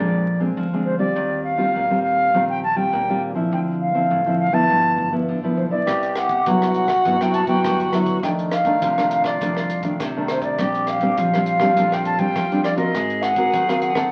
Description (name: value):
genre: samba and choro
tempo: 102 BPM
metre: 4/4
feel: straight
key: unclear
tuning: A4 = 440 Hz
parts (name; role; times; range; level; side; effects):
- bright reedy baroque flute; melody; 0.0-14.1 s; C5 to A5; -23 LUFS; equal; none
- nylon-string guitar; accompaniment; 0.0-14.1 s; F2 to Bb4; -24 LUFS; equal; none
- upright bass; bass; 0.0-14.0 s; Gb1 to G2; -33 LUFS; equal; none
- growling tenor saxophone; second line; 5.9-14.1 s; Eb4 to Ab4; -28 LUFS; equal; none
- compact cocktail drum kit; drums; 5.9-14.1 s; hi-hat, kick drum, rim click; -33 LUFS; equal; none
room: wet studio ambience, RT60 0.5 s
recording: very old 78 rpm record, vinyl crackle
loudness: -20 LUFS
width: mono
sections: 0.0-14.1 A section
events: none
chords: 0.0 Bb9; 1.2 Eb69; 3.5 Dm9; 4.7 G13; 5.9 Cmaj9#11; 8.2 F6; 10.6 Bb69; 12.9 Ab9